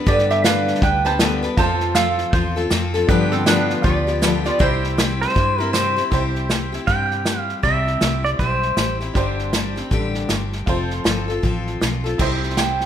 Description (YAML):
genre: honky-tonk and classic country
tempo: 158 BPM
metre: 4/4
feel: swing 61% on 8ths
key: C major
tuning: A4 = 440 Hz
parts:
  - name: picked steel-string acoustic guitar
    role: accompaniment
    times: 0.0-12.9 s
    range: G2 to B4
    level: -24 LUFS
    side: left 4 dB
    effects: none
  - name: tack piano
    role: accompaniment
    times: 0.0-12.9 s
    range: D4 to C5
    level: -30 LUFS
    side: right 4 dB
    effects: none
  - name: lap resonator guitar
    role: melody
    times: 0.1-5.7, 12.6-12.9 s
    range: C4 to A5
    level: -21 LUFS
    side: right 4 dB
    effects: none
  - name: vintage muted fingered electric bass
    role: bass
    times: 0.1-12.8 s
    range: F1 to G2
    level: -24 LUFS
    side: equal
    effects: none
  - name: unplugged drum kit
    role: drums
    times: 0.1-12.8 s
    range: crash cymbal, hi-hat, kick drum, snare drum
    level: -22 LUFS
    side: equal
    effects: none
  - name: pedal steel guitar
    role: second line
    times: 5.2-9.0 s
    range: C5 to G5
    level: -21 LUFS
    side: right 1 dB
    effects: none
room: moderate recital hall reverb, RT60 1.4 s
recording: minimal, uncompressed stereo recording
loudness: -17 LUFS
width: side -9 dB against mid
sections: 0.0-6.1 A section; 6.1-12.2 B section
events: pedal steel guitar solo 6.1-12.2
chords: 0.0 G; 1.6 F; 3.1 G7; 4.6 C; 9.2 Gsus4; 10.7 F; 12.2 C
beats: | 0.07 0.44 0.82 1.20 | 1.58 1.96 2.33 2.71 | 3.09 3.47 3.84 4.22 | 4.60 4.98 5.36 5.74 | 6.11 6.49 6.87 7.25 | 7.63 8.01 8.39 8.77 | 9.15 9.53 9.91 10.29 | 10.67 11.05 11.43 11.81 | 12.19 12.57